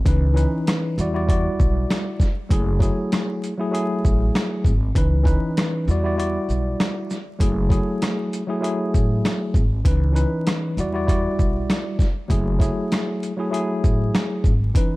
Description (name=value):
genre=hip hop, boom-bap hip-hop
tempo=98 BPM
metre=4/4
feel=swing 56% on 16ths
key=F# minor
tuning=A4 = 440 Hz
part: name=mellow tine electric piano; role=accompaniment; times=0.0-15.0 s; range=E3 to D5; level=-23 LUFS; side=left 1 dB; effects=medium stereo tremolo, cassette tape, high-pass filter, low-pass filter
part: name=upright bass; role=bass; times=0.1-14.7 s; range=F#1 to E2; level=-22 LUFS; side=equal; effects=none
part: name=dusty soul sampler-style drum kit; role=drums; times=0.1-14.9 s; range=hi-hat, kick drum, rim click, shaker, snare drum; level=-21 LUFS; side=equal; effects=overdrive
room=light reverb, digital ambience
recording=dark, warm production, vinyl crackle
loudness=-19 LUFS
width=side -20 dB against mid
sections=0.0-15.0 A section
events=break 6.2-7.4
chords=0.1 C#m9; 1.0 Em9; 2.5 F#m9; 5.0 C#m9; 5.9 Em9; 7.4 F#m9; 9.8 C#m9; 10.8 Em9; 12.3 F#m9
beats=| 0.05 0.67 1.28 1.89 | 2.50 3.12 3.73 4.34 | 4.95 5.57 6.18 6.79 | 7.40 8.01 8.63 9.24 | 9.85 10.46 11.07 11.69 | 12.30 12.91 13.52 14.14 | 14.75